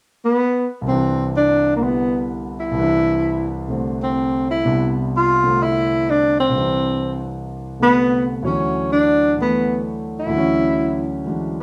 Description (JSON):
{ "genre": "jazz", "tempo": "127 BPM", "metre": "4/4", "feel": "swing 67% on 8ths", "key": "C major", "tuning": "A4 = 441 Hz", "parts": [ { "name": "breathy tenor saxophone", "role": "melody", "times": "0.2-11.1 s", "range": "Bb3 to F4", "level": "-20 LUFS", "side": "equal", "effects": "none" }, { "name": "warm grand piano", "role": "accompaniment", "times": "0.8-11.6 s", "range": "C2 to C#5", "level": "-24 LUFS", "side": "equal", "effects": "none" } ], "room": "wet studio reverb, RT60 0.8 s", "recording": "band playing live in one room", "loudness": "-19 LUFS", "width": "mono", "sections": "0.8-11.6 A section", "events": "none", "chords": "0.0 N.C.; 0.8 Cmaj9; 8.4 Dmaj9" }